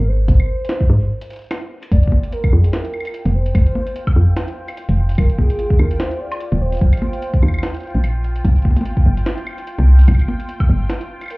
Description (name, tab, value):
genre	IDM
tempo	147 BPM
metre	4/4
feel	swing 56% on 16ths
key	F dorian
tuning	A4 = 440 Hz
part	warbly nostalgic lead	melody	0.0-7.8, 11.3-11.4 s	Ab4 to D5	-28 LUFS	equal	chorus, tape echo
part	woody FM bass	bass	0.0-10.8 s	Eb1 to Ab2	-14 LUFS	equal	none
part	electronic kick drum	drums	0.3-10.7 s	none	-15 LUFS	equal	none
part	jungle sampler-style drum kit	drums	0.3-11.4 s	hi-hat, snare drum, toms, woodblock	-27 LUFS	equal	ping-pong delay
part	bubbling stepped-filter texture	texture	1.9-11.4 s	F4 to G5	-33 LUFS	equal	chorus, built-in reverb
room	digital ambience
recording	heard muffled through a wall, club reverb, EQ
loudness	-14 LUFS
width	side -24 dB against mid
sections	0.0-1.9 A section; 1.9-11.4 A section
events	break 1.1-1.9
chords	0.0 Ab; 1.9 Fsus2; 5.2 Eb; 8.4 C5